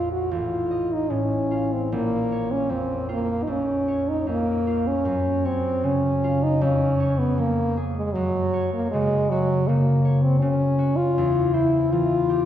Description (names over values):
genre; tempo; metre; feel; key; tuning
classical, romantic duo for French horn and harp; 78 BPM; 4/4; uneven beats, rubato; unclear; A4 = 439 Hz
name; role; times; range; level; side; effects
warm French horn; melody; 0.0-12.5 s; Gb3 to Gb4; -22 LUFS; equal; none
concert harp; accompaniment; 0.0-12.5 s; A1 to Eb5; -24 LUFS; equal; none
room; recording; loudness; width
wet concert hall reverb, RT60 1.9 s; heard from further back in the room; -20 LUFS; side -10 dB against mid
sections
0.0-12.5 A section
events
none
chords
0.3 F7/A; 1.9 Bbm; 5.1 Gb5; 6.6 Db/F; 8.1 Gb5; 11.2 C/E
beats
0.32 1.11 | 1.91 2.70 3.48 4.28 | 5.06 5.84 6.62 7.38 | 8.14 8.92 9.68 10.41 | 11.16 11.91